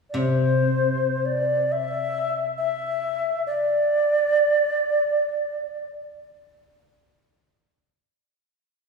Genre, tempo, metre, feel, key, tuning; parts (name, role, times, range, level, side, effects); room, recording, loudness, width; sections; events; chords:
chinese traditional, Chinese chamber ensemble; free time; A4 = 440 Hz
bright xiao; melody; 0.1-5.8 s; C5 to E5; -22 LUFS; equal
guzheng; accompaniment; 0.1-3.2 s; C3; -26 LUFS; equal
wet concert hall reverb, RT60 2.0 s; heard from further back in the room, small room ambience; -20 LUFS; side -4 dB against mid
0.0-7.6 A section; 7.6-8.9 B section